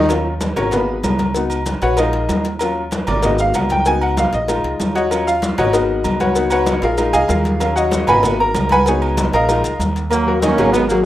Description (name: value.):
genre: latin, salsa.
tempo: 192 BPM.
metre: 4/4.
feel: straight.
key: Eb minor.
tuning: A4 = 438 Hz.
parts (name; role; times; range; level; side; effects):
bright grand piano; accompaniment; 0.0-11.1 s; Eb3 to Cb6; -17 LUFS; left 1 dB; none.
upright bass; bass; 0.0-11.0 s; Ab1 to Eb2; -22 LUFS; right 1 dB; none.
agogo bells and timbales; percussion; 0.1-10.9 s; none; -25 LUFS; right 2 dB; none.
congas; percussion; 0.1-11.1 s; none; -23 LUFS; left 1 dB; none.
cowbell; percussion; 0.1-10.9 s; none; -26 LUFS; left 4 dB; none.
maracas; percussion; 0.1-11.1 s; none; -32 LUFS; left 2 dB; none.
clear trombone section; melody; 10.1-11.1 s; Gb3 to Db4; -16 LUFS; right 3 dB; none.
room: wet studio reverb, RT60 0.6 s.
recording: rough home demo mix.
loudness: -14 LUFS.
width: side -13 dB against mid.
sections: 0.1-10.1 A section.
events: grand piano solo 0.1-10.1.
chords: 0.1 Ebm7; 0.7 Abm7; 1.4 Db7sus4; 2.0 Bb7sus4; 2.6 Ebm7; 3.2 Abm7; 3.9 Db7sus4; 4.5 Bb7sus4; 5.1 Ebm7; 5.7 Abm7; 6.4 Db7sus4; 7.0 Bb7sus4; 7.6 Ebm7; 8.2 Abm7; 8.9 Db7sus4; 9.5 Bb7sus4; 10.1 Ebm7.